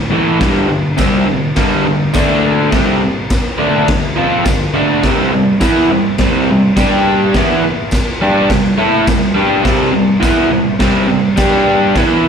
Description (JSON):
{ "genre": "garage rock duo or trio", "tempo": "104 BPM", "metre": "4/4", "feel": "straight", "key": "unclear", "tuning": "A4 = 440 Hz", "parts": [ { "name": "crunchy overdriven guitar", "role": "riff", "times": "0.0-12.2 s", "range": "G2 to A4", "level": "-12 LUFS", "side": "equal", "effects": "slapback echo" }, { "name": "raw garage drum kit", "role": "drums", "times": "0.4-12.1 s", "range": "crash cymbal, kick drum, snare drum", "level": "-16 LUFS", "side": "equal", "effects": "none" }, { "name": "tambourine", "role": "percussion", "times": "1.0-11.5 s", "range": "none", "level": "-33 LUFS", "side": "left 2 dB", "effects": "none" } ], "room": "moderate club reverb, RT60 0.6 s", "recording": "live gig heard through the venue's PA, recital hall reverb", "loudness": "-11 LUFS", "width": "side -7 dB against mid", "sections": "0.0-12.3 A section", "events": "none", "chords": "0.4 G5; 2.1 D5; 2.7 G5; 5.0 C5; 6.8 G5; 7.3 C5; 11.4 G5" }